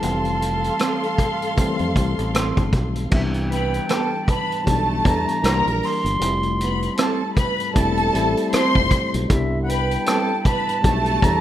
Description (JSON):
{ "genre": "lush 1970s-style soul", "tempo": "78 BPM", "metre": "4/4", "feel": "swing 58% on 16ths", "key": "C major", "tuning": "A4 = 440 Hz", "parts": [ { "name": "concert flute", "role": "melody", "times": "0.0-11.4 s", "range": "E5 to C6", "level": "-26 LUFS", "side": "right 2 dB", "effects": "none" }, { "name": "warm symphonic string section", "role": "second line", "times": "0.0-11.4 s", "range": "A3 to C6", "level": "-24 LUFS", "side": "equal", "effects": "none" }, { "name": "tine electric piano", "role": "accompaniment", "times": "0.0-11.4 s", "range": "E3 to A5", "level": "-26 LUFS", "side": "left 2 dB", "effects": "medium stereo tremolo" }, { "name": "fingered electric bass", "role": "bass", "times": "0.0-11.4 s", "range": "E1 to F2", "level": "-24 LUFS", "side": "equal", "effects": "none" }, { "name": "vintage drum kit", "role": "drums", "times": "0.0-11.4 s", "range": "crash cymbal, hi-hat, kick drum, rim click", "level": "-23 LUFS", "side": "equal", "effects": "none" }, { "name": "electric guitar through a small old amp", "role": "riff", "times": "0.8-10.3 s", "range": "G3 to C5", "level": "-27 LUFS", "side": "right 5 dB", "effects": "phaser" } ], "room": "light reverb", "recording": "rough home demo mix", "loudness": "-18 LUFS", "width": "side -12 dB against mid", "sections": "0.0-3.1 A section; 3.1-11.4 B section", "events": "tine electric piano fill 2.0-3.1", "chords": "0.0 Fmaj7; 3.1 Cmaj7; 5.4 C7; 6.2 Fmaj7; 9.3 Cmaj7" }